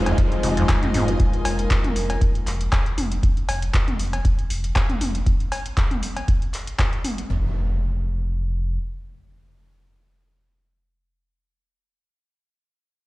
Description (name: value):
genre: acid house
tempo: 118 BPM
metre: 4/4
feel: swing 54% on 16ths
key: F minor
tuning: A4 = 440 Hz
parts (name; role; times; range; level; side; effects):
- dark analog pad; sustained chords; 0.0-3.2 s; Ab3 to C5; -27 LUFS; left 1 dB; chorus, sidechain pumping
- round analog bass; bass; 0.0-8.8 s; F1; -24 LUFS; equal; sidechain pumping
- downlifter and impact; sound effects; 0.0-3.2, 7.3-11.2 s; none; -33 LUFS; equal; none
- rich chamber string section; texture; 0.0-3.2 s; F4 to Ab5; -33 LUFS; left 1 dB; sidechain pumping
- acid bass, saw; riff; 0.1-1.1 s; Eb2 to C3; -25 LUFS; equal; overdrive, lush chorus, analog delay
- electro analog drum machine; drums; 0.1-7.3 s; cowbell, handclaps, hi-hat, toms; -27 LUFS; left 1 dB; none
- breakbeat sampler-style drum kit; drums; 0.2-1.1 s; hi-hat, snare drum; -40 LUFS; right 1 dB; none
- electronic kick drum; drums; 0.2-6.9 s; none; -20 LUFS; equal; none
room: little or no reverb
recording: played on a big sound system in a bare room, large studio reverb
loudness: -20 LUFS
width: side -19 dB against mid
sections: 0.0-7.3 A section; 7.3-11.4 B section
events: fade-out on string section 0.0-3.2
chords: 0.0 Fm7; 7.3 N.C.